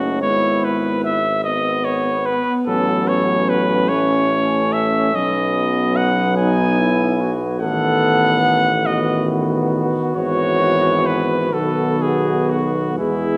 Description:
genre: classical, hymn-like piece for brass band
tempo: 41-50 BPM (dotted quarters)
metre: 6/8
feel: rubato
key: unclear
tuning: A4 = 440 Hz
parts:
  - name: clear cornet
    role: melody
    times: 0.0-13.4 s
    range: E4 to G#5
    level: -22 LUFS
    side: equal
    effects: none
  - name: mellow flugelhorn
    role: second line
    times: 0.0-13.4 s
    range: B3 to A4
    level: -27 LUFS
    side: equal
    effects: none
  - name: clear euphonium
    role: accompaniment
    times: 0.0-13.4 s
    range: B3 to C#4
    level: -26 LUFS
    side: equal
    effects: none
  - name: warm trombone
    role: accompaniment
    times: 0.0-13.4 s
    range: D#3 to B3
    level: -27 LUFS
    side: equal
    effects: none
  - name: clear tuba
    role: bass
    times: 0.0-13.4 s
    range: F#1 to E2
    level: -25 LUFS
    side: equal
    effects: none
room: moderate scoring stage reverb, RT60 1.6 s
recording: dark, warm production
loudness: -18 LUFS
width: mono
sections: 0.0-13.4 A section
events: none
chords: 0.2 E/G#; 2.7 F#m/A; 5.2 B; 7.6 B7/A; 10.2 E/G#; 11.5 B

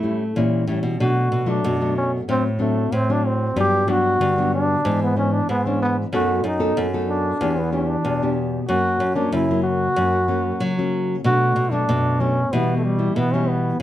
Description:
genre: samba and choro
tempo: 94 BPM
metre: 4/4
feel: straight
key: B minor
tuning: A4 = 439 Hz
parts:
  - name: clear trombone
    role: melody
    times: 0.0-13.8 s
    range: G3 to G4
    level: -22 LUFS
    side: equal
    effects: none
  - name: nylon-string guitar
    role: accompaniment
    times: 0.0-13.8 s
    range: F#2 to A4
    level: -23 LUFS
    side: left 2 dB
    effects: none
  - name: nylon-string guitar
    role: bass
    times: 0.0-13.8 s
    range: E2 to A3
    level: -23 LUFS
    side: equal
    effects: none
room: moderate small room reverb, RT60 0.5 s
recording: dark, warm production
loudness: -18 LUFS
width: side -12 dB against mid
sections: 0.0-1.0 A section; 1.0-13.8 B section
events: none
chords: 0.0 A7; 1.0 Bm7; 2.3 D7/A; 3.6 Gmaj7; 4.8 E7/G#; 6.1 B7/F#; 7.4 Em7; 8.7 F#; 11.2 Bm7; 12.5 Em/B

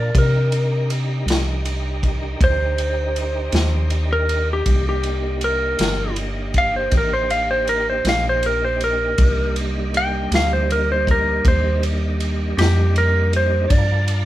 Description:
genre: slow blues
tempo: 53 BPM (dotted quarters)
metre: 12/8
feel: straight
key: unclear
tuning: A4 = 441 Hz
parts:
  - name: clean lap steel guitar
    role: melody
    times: 0.0-14.3 s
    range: G4 to G5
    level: -20 LUFS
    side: equal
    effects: none
  - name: tonewheel organ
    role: sustained chords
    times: 0.0-14.3 s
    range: G3 to A5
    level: -28 LUFS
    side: right 2 dB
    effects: chorus vibrato, fast rotary speaker
  - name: organ-like FM bass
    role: bass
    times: 0.0-14.3 s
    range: G1 to C3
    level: -21 LUFS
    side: equal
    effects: none
  - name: vintage drum kit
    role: drums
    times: 0.1-14.3 s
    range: kick drum, ride cymbal, snare drum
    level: -23 LUFS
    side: equal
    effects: none
room: light reverb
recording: band playing live in one room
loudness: -17 LUFS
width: side -14 dB against mid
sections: 0.0-14.3 A section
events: electric slide guitar solo 0.0-14.3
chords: 0.1 Cm7; 13.7 Gm7

